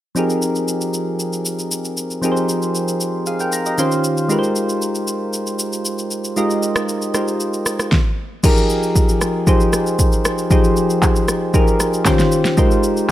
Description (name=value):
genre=amapiano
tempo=116 BPM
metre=4/4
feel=straight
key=F minor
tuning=A4 = 438 Hz
part: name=soft electric-piano-like synth keys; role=accompaniment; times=0.1-13.1 s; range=Eb3 to Bb5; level=-17 LUFS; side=equal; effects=chorus
part: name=deep house drum kit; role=drums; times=0.2-13.1 s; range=crash cymbal, handclaps, kick drum, rim click, shaker, snare drum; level=-18 LUFS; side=equal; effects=none
room=light reverb, digital ambience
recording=none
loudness=-15 LUFS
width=side -13 dB against mid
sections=0.2-8.4 A section; 8.4-13.1 B section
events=synth keys fill 3.3-4.3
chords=0.2 Fm11; 3.8 Eb13; 4.3 Abmaj13; 8.4 Fm11; 12.1 Eb13; 12.6 Abmaj13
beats=| 0.16 0.68 1.20 1.71 | 2.23 2.75 3.27 3.78 | 4.30 4.82 5.33 5.85 | 6.37 6.89 7.40 7.92 | 8.44 8.96 9.47 9.99 | 10.51 11.02 11.54 12.06 | 12.58 13.09